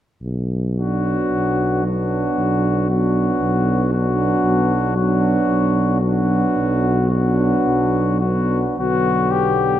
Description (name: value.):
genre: classical, hymn-like piece for brass band.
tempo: 56 BPM.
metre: 4/4.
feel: rubato.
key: B minor.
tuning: A4 = 440 Hz.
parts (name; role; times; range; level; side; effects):
mellow tuba; bass; 0.2-9.8 s; B1; -20 LUFS; equal; none.
warm cornet; melody; 0.8-9.8 s; F#4 to G4; -22 LUFS; left 6 dB; none.
mellow French horn section; second line; 0.8-9.8 s; B3 to D4; -23 LUFS; right 6 dB; none.
mellow trombone; accompaniment; 0.8-9.8 s; D3 to F#3; -26 LUFS; right 2 dB; none.
warm euphonium; accompaniment; 0.8-9.8 s; F#3 to B3; -25 LUFS; left 2 dB; none.
room: moderate concert hall reverb, RT60 2.0 s.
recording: none.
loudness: -16 LUFS.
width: side -11 dB against mid.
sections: 0.2-8.8 A section; 8.8-9.8 B section.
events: none.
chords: 0.2 Bm.